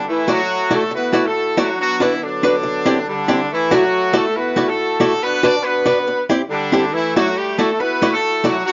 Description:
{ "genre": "ska", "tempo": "140 BPM", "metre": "4/4", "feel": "straight", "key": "D major", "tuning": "A4 = 441 Hz", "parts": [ { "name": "clear horn section", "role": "melody", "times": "0.0-8.7 s", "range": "D3 to D5", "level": "-20 LUFS", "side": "equal", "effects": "none" }, { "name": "archtop guitar, miked and amplified", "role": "accompaniment", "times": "0.3-8.6 s", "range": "A3 to D5", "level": "-19 LUFS", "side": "equal", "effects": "none" } ], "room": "moderate club reverb, RT60 0.6 s", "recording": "nothing above 7.5 kHz", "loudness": "-17 LUFS", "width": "mono", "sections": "0.0-8.7 A section", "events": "none", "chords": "0.1 Dadd9; 1.8 Bm; 2.6 Cadd9; 3.5 Dadd9; 5.2 Bm; 6.1 Cadd9; 6.9 Dadd9", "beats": "| 0.06 0.49 0.92 1.35 | 1.78 2.21 2.64 3.07 | 3.50 3.93 4.36 4.79 | 5.21 5.64 6.07 6.50 | 6.93 7.36 7.79 8.22 | 8.65" }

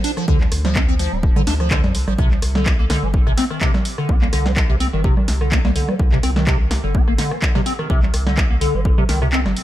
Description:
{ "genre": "acid house", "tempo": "126 BPM", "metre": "4/4", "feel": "swing 54% on 16ths", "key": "unclear", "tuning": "A4 = 440 Hz", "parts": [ { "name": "liquid acid bass", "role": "riff", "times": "0.0-9.4 s", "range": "C3 to D4", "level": "-22 LUFS", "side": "equal", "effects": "phaser, tube saturation, wide subtle chorus, dub echo" }, { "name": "punchy analog drum machine", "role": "drums", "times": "0.0-9.6 s", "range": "congas, handclaps, hi-hat, rim click, snare drum", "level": "-23 LUFS", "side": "right 1 dB", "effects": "analog delay" }, { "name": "warm sub bass", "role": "bass", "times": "0.3-9.5 s", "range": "D1 to F2", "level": "-21 LUFS", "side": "equal", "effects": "sidechain pumping" }, { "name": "electronic kick drum", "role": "drums", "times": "0.3-9.0 s", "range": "none", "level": "-18 LUFS", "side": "equal", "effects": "none" } ], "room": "light reverb", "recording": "echo-heavy mix", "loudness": "-15 LUFS", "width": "side -14 dB against mid", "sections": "0.0-9.6 A section", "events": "kick drops out 9.3-9.6", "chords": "0.0 Dm; 2.2 C5", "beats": "| 0.28 0.76 1.23 1.71 | 2.19 2.66 3.14 3.61 | 4.09 4.57 5.04 5.52 | 5.99 6.47 6.95 7.42 | 7.90 8.38 8.85 9.33" }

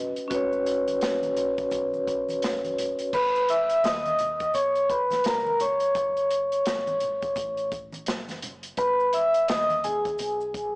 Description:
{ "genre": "hip hop, jazz-hop", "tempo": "85 BPM", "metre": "4/4", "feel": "swing 60% on 16ths", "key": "G# minor", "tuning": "A4 = 440 Hz", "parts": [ { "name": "vibraphone with medium mallets", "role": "accompaniment", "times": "0.0-10.8 s", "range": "C#4 to E6", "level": "-23 LUFS", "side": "equal", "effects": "none" }, { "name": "deep dub fingered electric bass", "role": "bass", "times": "0.0-10.8 s", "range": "F#1 to D#2", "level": "-46 LUFS", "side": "equal", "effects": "tube saturation" }, { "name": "open jazz drum kit", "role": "drums", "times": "0.2-10.7 s", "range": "crash cymbal, hi-hat, kick drum, snare drum", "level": "-33 LUFS", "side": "equal", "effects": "none" }, { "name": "maracas and congas", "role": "percussion", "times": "0.2-10.7 s", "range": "none", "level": "-48 LUFS", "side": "right 1 dB", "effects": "none" } ], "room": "light reverb, small room ambience", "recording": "blown-out, overdriven recording, overdrive, small speaker sound", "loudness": "-23 LUFS", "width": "side -27 dB against mid", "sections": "0.0-3.1 A section; 3.1-10.8 B section", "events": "vibraphone solo 3.1-10.8", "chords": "0.0 G#m9; 3.1 G#madd9; 6.0 F#madd9; 8.8 G#m", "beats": "| 0.31 1.01 1.72 2.42 | 3.13 3.84 4.54 5.25 | 5.96 6.66 7.37 8.07 | 8.78 9.48 10.19" }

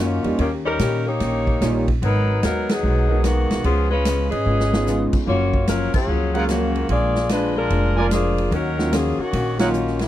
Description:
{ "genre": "jazz, big band swing", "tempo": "148 BPM", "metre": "4/4", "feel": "swing 65% on 8ths", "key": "Eb minor", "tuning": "A4 = 440 Hz", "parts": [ { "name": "mellow saxophone section", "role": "melody", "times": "0.0-10.1 s", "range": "Db3 to Eb5", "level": "-22 LUFS", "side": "left 2 dB", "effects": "none" }, { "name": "archtop guitar, miked and amplified", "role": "accompaniment", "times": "0.0-10.0 s", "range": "Gb2 to Bb4", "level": "-28 LUFS", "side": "left 3 dB", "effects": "none" }, { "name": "upright bass", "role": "bass", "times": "0.0-10.1 s", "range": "F1 to Bb2", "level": "-22 LUFS", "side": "equal", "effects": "none" }, { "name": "clear grand piano", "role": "accompaniment", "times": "0.2-9.7 s", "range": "Cb3 to F5", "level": "-25 LUFS", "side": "right 3 dB", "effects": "none" }, { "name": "swinging big-band drum kit", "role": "drums", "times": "0.2-10.1 s", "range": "crash cymbal, hi-hat, kick drum, ride cymbal, snare drum", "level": "-26 LUFS", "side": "equal", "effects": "none" }, { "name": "clear trumpet section", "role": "stabs", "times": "6.3-9.7 s", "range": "Eb4 to Ab5", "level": "-25 LUFS", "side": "right 4 dB", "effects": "none" } ], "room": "little or no reverb", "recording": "dry, close 1970s-style studio recording", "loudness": "-18 LUFS", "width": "side -13 dB against mid", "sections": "0.0-10.1 A section", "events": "band accent 2.6, 5.9, 9.5; drum fill 4.5-4.9", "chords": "0.4 Eb7; 2.0 Abm9; 3.6 Db7; 5.3 Gbmaj7; 6.9 Bb7; 8.5 Ebm7", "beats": "| 0.39 0.80 1.21 1.61 | 2.02 2.43 2.84 3.24 | 3.65 4.05 4.46 4.87 | 5.27 5.68 6.08 6.49 | 6.90 7.30 7.71 8.11 | 8.52 8.92 9.33 9.74" }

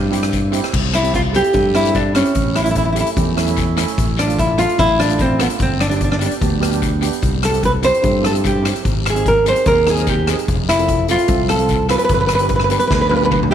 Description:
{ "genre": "calypso", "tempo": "148 BPM", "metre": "4/4", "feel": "straight", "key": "C major", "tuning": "A4 = 440 Hz", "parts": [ { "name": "modern bright fingered electric bass", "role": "bass", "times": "0.0-13.5 s", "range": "F1 to G2", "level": "-20 LUFS", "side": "left 1 dB", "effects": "none" }, { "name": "steel pan", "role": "accompaniment", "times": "0.1-13.5 s", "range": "A3 to Bb4", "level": "-24 LUFS", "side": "right 12 dB", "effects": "none" }, { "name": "street-band drum kit", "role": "drums", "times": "0.1-13.5 s", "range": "crash cymbal, hi-hat, kick drum, rim click, snare drum, toms", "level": "-21 LUFS", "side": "left 1 dB", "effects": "none" }, { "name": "guiro", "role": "percussion", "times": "0.1-13.4 s", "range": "none", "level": "-30 LUFS", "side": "left 14 dB", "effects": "none" }, { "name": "nylon-string guitar", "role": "melody", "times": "0.9-13.5 s", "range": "B3 to C5", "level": "-16 LUFS", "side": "equal", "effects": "none" } ], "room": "light reverb, small room ambience", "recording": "1960s-style stereo with parts hard left and right", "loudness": "-14 LUFS", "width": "side -9 dB against mid", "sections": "0.7-13.5 A section", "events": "drum fill 12.9-13.5", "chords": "0.0 C; 2.4 A7; 4.0 Dm/A; 5.6 G; 7.2 C; 8.8 Ab; 10.5 F; 12.1 G", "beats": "0.33 | 0.73 1.14 1.55 1.95 | 2.36 2.76 3.17 3.57 | 3.98 4.38 4.79 5.20 | 5.60 6.01 6.41 6.82 | 7.22 7.63 8.04 8.44 | 8.85 9.26 9.66 10.07 | 10.47 10.88 11.29 11.69 | 12.10 12.50 12.91 13.31" }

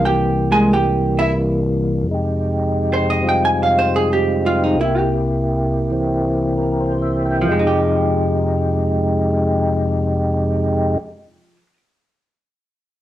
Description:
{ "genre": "jazz", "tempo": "89 BPM", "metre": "4/4", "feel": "swing 68% on 8ths", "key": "F minor", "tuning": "A4 = 440 Hz", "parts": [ { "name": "percussive tonewheel organ", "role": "melody", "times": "0.0-11.0 s", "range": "C2 to G5", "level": "-17 LUFS", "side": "equal", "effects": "chorus vibrato, slow rotary speaker" }, { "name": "vintage hollow-body jazz guitar", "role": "accompaniment", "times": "0.0-11.8 s", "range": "F3 to Ab5", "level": "-19 LUFS", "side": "right 2 dB", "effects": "none" } ], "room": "moderate studio reverb, RT60 0.8 s", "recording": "worn, warbling old tape, cassette tape, warbly pitch drift", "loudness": "-16 LUFS", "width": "side -13 dB against mid", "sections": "0.0-7.5 A section; 7.5-10.2 B section", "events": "hollow-body jazz guitar solo 0.0-7.5", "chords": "0.0 C7; 2.1 Fm9; 4.8 C7; 7.5 Fm9", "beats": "0.05 0.72 1.40 | 2.07 2.75 3.43 4.10 | 4.78 5.45 6.13 6.80 | 7.48 8.15 8.82 9.50" }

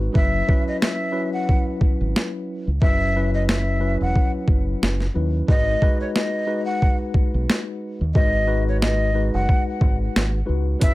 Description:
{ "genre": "hip hop, boom-bap hip-hop", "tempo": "90 BPM", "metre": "4/4", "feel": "swing 56% on 16ths", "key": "G# minor", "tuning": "A4 = 440 Hz", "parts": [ { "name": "mellow tine electric piano", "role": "accompaniment", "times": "0.0-10.9 s", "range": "F#3 to B4", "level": "-26 LUFS", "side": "left 2 dB", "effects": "slow stereo tremolo, high-pass filter, low-pass filter" }, { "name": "deep dub fingered electric bass", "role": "bass", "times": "0.0-10.9 s", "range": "E1 to D#2", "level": "-22 LUFS", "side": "equal", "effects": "none" }, { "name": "breathy jazz flute", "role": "melody", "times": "0.2-10.9 s", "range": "C#5 to F#5", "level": "-26 LUFS", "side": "left 1 dB", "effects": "high-pass filter, low-pass filter, plate reverb, ping-pong delay" }, { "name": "boom bap sampler-style drum kit", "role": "drums", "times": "0.2-10.9 s", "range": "hi-hat, kick drum, snare drum", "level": "-19 LUFS", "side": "equal", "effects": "none" } ], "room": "little or no reverb", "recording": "none", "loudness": "-18 LUFS", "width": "side -18 dB against mid", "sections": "0.1-10.9 A section", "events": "hi-hats muted 0.1-10.8", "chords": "0.1 F#7sus4; 5.5 G#m7", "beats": "| 0.15 0.82 1.48 2.15 | 2.82 3.48 4.15 4.82 | 5.48 6.15 6.82 7.48 | 8.15 8.82 9.48 10.15 | 10.82" }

